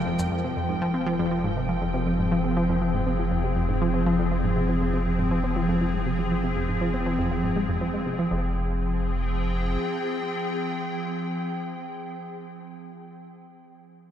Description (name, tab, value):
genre	ambient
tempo	120 BPM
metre	4/4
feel	straight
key	F minor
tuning	A4 = 435 Hz
part	evolving wavetable pad	sustained chords	0.0-12.8 s	F3 to G5	-27 LUFS	equal	ensemble chorus, built-in reverb
part	warm sub bass	bass	0.0-9.8 s	F1	-30 LUFS	equal	none
part	analog pluck	riff	0.1-8.5 s	F2 to C4	-28 LUFS	equal	chorus, ping-pong delay
room	moderate cathedral reverb, RT60 5.3 s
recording	in a vast, echoing space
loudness	-23 LUFS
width	side -10 dB against mid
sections	0.3-8.3 A section; 8.3-12.3 B section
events	filter sweep on synth arpeggio sound 0.3-8.3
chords	0.3 Fmadd9